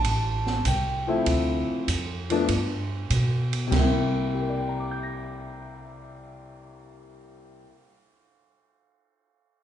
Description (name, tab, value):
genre	jazz piano trio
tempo	98 BPM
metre	4/4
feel	swing 69% on 8ths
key	C mixolydian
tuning	A4 = 438 Hz
part	warm grand piano	melody	0.0-8.0 s	C3 to Bb6	-27 LUFS	left 2 dB	none
part	upright bass	bass	0.0-7.6 s	A1 to B2	-28 LUFS	right 1 dB	none
part	open jazz drum kit	drums	0.0-3.9 s	hi-hat, kick drum, ride cymbal, snare drum	-30 LUFS	right 3 dB	none
room	wet recital hall reverb, RT60 1.4 s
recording	recorded in a church or concert hall, nothing above 10.5 kHz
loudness	-23 LUFS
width	side -10 dB against mid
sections	0.0-3.7 A section; 3.7-6.2 B section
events	grand piano solo 0.0-3.7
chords	0.0 Am7; 1.3 Dm7; 2.5 G; 3.7 C7